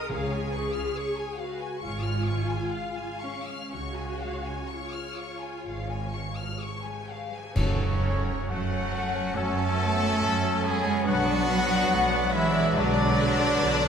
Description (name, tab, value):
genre	classical, slow romantic movement for symphony orchestra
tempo	58-73 BPM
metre	4/4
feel	rubato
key	F# minor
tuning	A4 = 439 Hz
part	warm studio violin section	melody	0.0-13.9 s	A4 to E#6	-36 LUFS	left 4 dB	none
part	warm studio violin section	second line	0.0-13.9 s	B4 to A5	-35 LUFS	left 2 dB	none
part	dark studio viola section	accompaniment	0.0-13.9 s	F#3 to G#4	-34 LUFS	equal	none
part	concert harp	arpeggios	0.0-13.9 s	F#2 to D6	-38 LUFS	left 7 dB	none
part	rich studio double bass section	bass	0.1-13.9 s	G#1 to F#2	-32 LUFS	right 3 dB	none
part	warm studio cello section	bass	0.1-13.9 s	G#2 to A3	-32 LUFS	right 3 dB	none
part	timpani	percussion	0.1-1.3, 7.6-8.9 s	F#2 to C#3	-34 LUFS	left 1 dB	none
part	cymbal swell, clash cymbals and concert bass drum	percussion	3.7-9.3 s	none	-32 LUFS	equal	none
part	bright clarinet	second line	7.5-13.9 s	C#4 to D4	-37 LUFS	left 2 dB	none
part	warm trumpet section	stabs	7.5-13.9 s	C#4 to A4	-30 LUFS	equal	none
part	mellow silver concert flute	second line	7.6-13.9 s	C#5 to A5	-33 LUFS	left 3 dB	none
part	warm cor anglais	second line	7.6-13.9 s	F#3 to C#4	-35 LUFS	right 2 dB	none
part	warm bassoon	accompaniment	7.6-13.9 s	F#3	-35 LUFS	equal	none
part	warm French horn section	sustained chords	7.6-13.1 s	F#3 to D4	-37 LUFS	left 4 dB	none
room	wet scoring stage reverb, RT60 1.9 s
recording	minimal, uncompressed stereo recording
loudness	-25 LUFS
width	side -7 dB against mid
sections	0.0-7.6 A section; 7.6-13.9 B section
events	band accent 7.6-8.5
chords	0.1 C#; 7.6 F#m; 11.1 Bm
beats	| 0.10 0.96 1.82 2.73 | 3.74 4.71 5.66 6.61 | 7.56 8.50 9.36 10.22 | 11.07 11.90 12.74 13.58